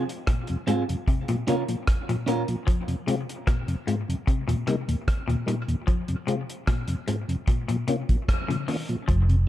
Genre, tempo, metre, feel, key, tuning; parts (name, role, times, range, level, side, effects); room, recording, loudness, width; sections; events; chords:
dub reggae; 75 BPM; 4/4; straight; F minor; A4 = 443 Hz
electric guitar at the edge of break-up; accompaniment; 0.0-2.4 s; C4 to Bb4; -30 LUFS; right 4 dB; dub echo
semi-hollow electric guitar; arpeggios; 0.0-9.2 s; Ab2 to F3; -30 LUFS; left 4 dB; dub echo
cloth-damped thuddy drum kit; drums; 0.1-9.5 s; hi-hat, kick drum, rim click; -26 LUFS; equal
mellow tonewheel organ; accompaniment; 0.5-9.4 s; Eb2 to F4; -28 LUFS; left 1 dB; chorus vibrato, slow rotary speaker
vintage muted fingered electric bass; bass; 9.1-9.5 s; F1; -19 LUFS; equal
light reverb, small room ambience; dark, warm production; -24 LUFS; side -13 dB against mid
0.0-9.5 A section
0.0 Fm; 1.1 Bbm; 2.7 Fm; 4.3 Eb; 5.9 Fm; 7.5 Bbm